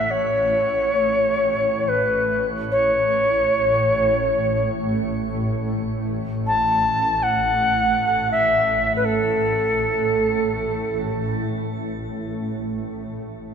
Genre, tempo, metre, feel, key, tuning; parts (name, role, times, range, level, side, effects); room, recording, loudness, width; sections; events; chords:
world meditative, free-time meditation music; free time; A major pentatonic; A4 = 440 Hz
Native American-style cedar flute; melody; 0.0-11.0 s; A4 to A5; -19 LUFS; equal; shimmer reverb, dub echo
granular cloud pad; drone; 0.0-13.5 s; A1 to A2; -26 LUFS; right 1 dB; built-in reverb
wet plate reverb, RT60 2.4 s; echo-heavy mix; -18 LUFS; side -7 dB against mid
0.0-12.6 A section